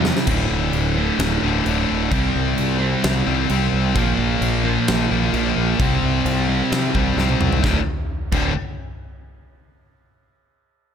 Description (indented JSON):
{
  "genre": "hard rock",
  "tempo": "131 BPM",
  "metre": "4/4",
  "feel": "straight",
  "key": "D minor",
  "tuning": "A4 = 439 Hz",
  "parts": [
    { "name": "crunchy overdriven guitar", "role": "riff", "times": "0.0-8.5 s", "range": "D2 to C4", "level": "-23 LUFS", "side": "right 10 dB", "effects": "none" },
    { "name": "high-gain distorted guitar", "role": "riff", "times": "0.0-8.5 s", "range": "D2 to C4", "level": "-22 LUFS", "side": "left 12 dB", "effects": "distortion" },
    { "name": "growling fingered electric bass", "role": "bass", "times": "0.0-8.5 s", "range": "D1 to C3", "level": "-23 LUFS", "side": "equal", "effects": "overdrive" },
    { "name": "huge arena drum kit", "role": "drums", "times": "0.1-8.4 s", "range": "crash cymbal, kick drum, snare drum, toms", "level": "-24 LUFS", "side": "equal", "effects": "none" }
  ],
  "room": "small room ambience",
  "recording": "none",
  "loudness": "-17 LUFS",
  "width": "side -8 dB against mid",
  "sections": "0.3-7.6 A section; 7.6-9.5 B section",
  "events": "drum fill 0.0, 7.2-7.6",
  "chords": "0.3 D5; 2.1 C5; 4.0 Bb5; 5.8 C5; 7.6 D5"
}